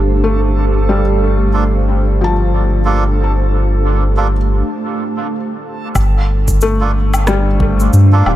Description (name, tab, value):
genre	ambient dub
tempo	91 BPM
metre	4/4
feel	swing 60% on 16ths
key	unclear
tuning	A4 = 440 Hz
part	granular cloud pad	sustained chords	0.0-8.4 s	A3 to F5	-21 LUFS	right 1 dB	built-in reverb
part	felt-muted upright piano	arpeggios	0.0-8.4 s	F3 to A5	-20 LUFS	left 3 dB	dub echo
part	soft dub sub bass	bass	0.0-8.4 s	D1 to G2	-13 LUFS	equal	none
part	backwards swelling texture	texture	0.0-4.6 s	A4	-26 LUFS	right 6 dB	built-in reverb
part	melodica	stabs	1.5-8.3 s	Bb3 to A4	-24 LUFS	right 4 dB	dub echo
part	electronic kick drum	drums	6.0-7.8 s	none	-18 LUFS	equal	none
part	electronic shaker, woodblock and rim click	drums	6.0-8.4 s	none	-22 LUFS	left 1 dB	none
room	light reverb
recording	none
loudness	-12 LUFS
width	side -13 dB against mid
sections	0.0-6.0 A section; 6.0-8.4 B section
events	break 4.6-6.0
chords	0.0 G7sus2; 6.0 Gm9